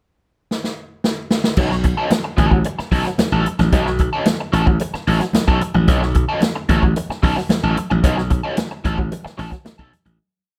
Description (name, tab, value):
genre	funk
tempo	111 BPM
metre	4/4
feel	straight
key	B mixolydian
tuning	A4 = 439 Hz
part	swinging big-band drum kit	drums	0.5-10.2 s	crash cymbal, hi-hat, kick drum, snare drum	-22 LUFS	equal	none
part	crunchy overdriven guitar	accompaniment	1.6-10.1 s	F#3 to A4	-25 LUFS	equal	wah
part	glassy slap bass	bass	1.6-10.2 s	A1 to B1	-21 LUFS	equal	none
part	congas	percussion	1.6-10.2 s	none	-28 LUFS	equal	none
room	light reverb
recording	none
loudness	-18 LUFS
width	mono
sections	0.0-1.6 pickup bar; 1.6-10.2 groove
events	drum fill 0.5-1.6; fade-out 8.0-10.2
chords	0.0 N.C.; 1.6 B9